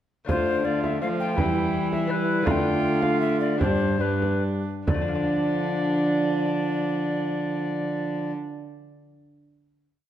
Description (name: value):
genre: classical, renaissance-style consort dance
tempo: 134-166 BPM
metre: 3/4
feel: straight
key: D dorian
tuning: A4 = 440 Hz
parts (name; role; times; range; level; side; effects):
- lute; accompaniment; 0.2-9.2 s; G2 to D5; -33 LUFS; left 3 dB; none
- tenor recorder; melody; 0.3-8.3 s; B4 to B5; -29 LUFS; left 4 dB; none
- rich viola; second line; 0.3-8.3 s; D4 to F4; -30 LUFS; right 2 dB; none
- warm trombone; accompaniment; 0.3-8.3 s; F3 to A3; -29 LUFS; left 1 dB; none
- rich cello; bass; 0.3-8.3 s; G2 to F3; -28 LUFS; right 1 dB; none
- frame drum; percussion; 0.3-5.1 s; none; -29 LUFS; right 2 dB; none
room: wet recital hall reverb, RT60 1.4 s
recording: none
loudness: -22 LUFS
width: side -11 dB against mid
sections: 0.3-4.9 A section; 4.9-7.6 final chord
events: slowing down 1.9-4.9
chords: 0.3 Dm; 1.4 Em; 2.5 Dm; 3.6 G; 4.9 Dm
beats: | 0.29 0.65 1.01 | 1.38 1.74 2.10 | 2.47 2.84 3.21 | 3.60 4.01 4.43 | 4.87 5.32 5.77 | 6.22 6.66 7.11